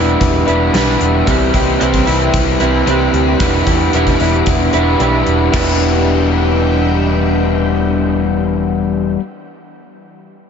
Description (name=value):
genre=rock, shoegaze and dream pop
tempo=112 BPM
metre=4/4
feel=straight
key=E minor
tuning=A4 = 436 Hz
part: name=ensemble organ-string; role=sustained chords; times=0.0-9.2 s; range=D4 to D6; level=-24 LUFS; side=equal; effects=ensemble chorus
part: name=direct-recorded clean electric guitar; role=arpeggios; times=0.0-9.2 s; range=E3 to G4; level=-24 LUFS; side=left 9 dB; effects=wide subtle chorus, digital delay
part: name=electric guitar through a small old amp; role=riff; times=0.0-9.2 s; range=C3 to B4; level=-17 LUFS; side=right 10 dB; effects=reverse reverb
part: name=overdriven electric guitar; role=riff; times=0.0-9.2 s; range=C3 to E4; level=-17 LUFS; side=left 12 dB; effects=analog chorus
part: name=picked electric bass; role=bass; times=0.0-9.2 s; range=E1 to E2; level=-18 LUFS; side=equal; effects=none
part: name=gated 80s drum kit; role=drums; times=0.2-5.7 s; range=crash cymbal, hi-hat, kick drum, snare drum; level=-19 LUFS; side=equal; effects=none
room=light reverb, small room ambience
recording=nothing above 7.7 kHz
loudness=-11 LUFS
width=side -7 dB against mid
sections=0.0-5.5 A section; 5.5-9.8 B section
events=none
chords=0.0 Em7; 1.3 Cmaj7; 3.4 Em7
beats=0.20 0.74 | 1.27 1.80 2.33 2.87 | 3.40 3.93 4.47 5.00 | 5.54 6.07 6.60 7.14 | 7.67 8.21 8.74